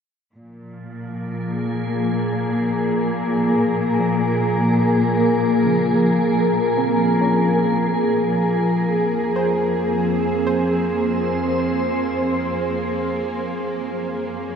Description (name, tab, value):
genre	ambient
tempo	free time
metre	none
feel	none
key	Bb minor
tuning	A4 = 440 Hz
part	glassy FM pad	sustained chords	1.1-14.6 s	F3 to Db5	-18 LUFS	equal	ensemble chorus, built-in reverb
part	rich symphonic cello section	bass	0.4-14.6 s	F2 to Bb2	-29 LUFS	right 1 dB	none
part	bowed-like drone	drone	1.1-14.6 s	Bb3 to Ab4	-33 LUFS	right 1 dB	built-in reverb
part	soft round pluck	arpeggios	4.0-13.5 s	Db3 to C5	-32 LUFS	right 2 dB	none
room	wet huge ambient reverb, RT60 8.8 s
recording	dark, warm production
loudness	-18 LUFS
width	side -7 dB against mid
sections	0.3-14.6 A section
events	fade-in on synth drone 0.3-14.6; fade-out on cello section 0.3-14.6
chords	0.3 Bbm7; 9.2 Fm; 13.7 Gb